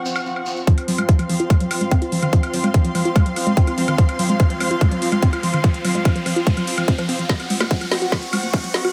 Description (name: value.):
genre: psychedelic trance.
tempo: 145 BPM.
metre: 4/4.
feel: straight.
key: unclear.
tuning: A4 = 438 Hz.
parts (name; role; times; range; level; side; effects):
pulsing gated texture; sustained chords; 0.0-8.9 s; F3 to C4; -30 LUFS; equal; chorus, built-in reverb, sidechain pumping.
dark studio string section; texture; 0.0-8.9 s; C4 to Db6; -29 LUFS; equal; sidechain pumping.
shekere; percussion; 0.1-0.6 s; none; -33 LUFS; equal; none.
drum and bass drum kit; drums; 0.2-8.9 s; hi-hat, snare drum, woodblock; -29 LUFS; equal; none.
woody wave-folded pluck; riff; 0.7-8.9 s; Eb3 to Gb4; -25 LUFS; equal; chorus, sidechain pumping, tape echo.
electronic kick drum; drums; 0.7-8.6 s; none; -18 LUFS; equal; none.
riser; sound effects; 3.7-8.9 s; none; -35 LUFS; equal; none.
room: light reverb.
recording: high-pass filter.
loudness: -19 LUFS.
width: mono.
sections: 0.7-8.9 A section.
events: build-up 0.7-8.9; filter sweep on synth arpeggio sound 0.7-8.9; filter sweep 0.7-8.9; riser 3.7-8.9; drum fill 7.3-8.9.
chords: 0.0 Gb5; 0.7 F5; 7.3 Gb5.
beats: 0.26 | 0.67 1.09 1.50 1.92 | 2.33 2.74 3.16 3.57 | 3.98 4.40 4.81 5.22 | 5.64 6.05 6.47 6.88 | 7.29 7.71 8.12 8.54.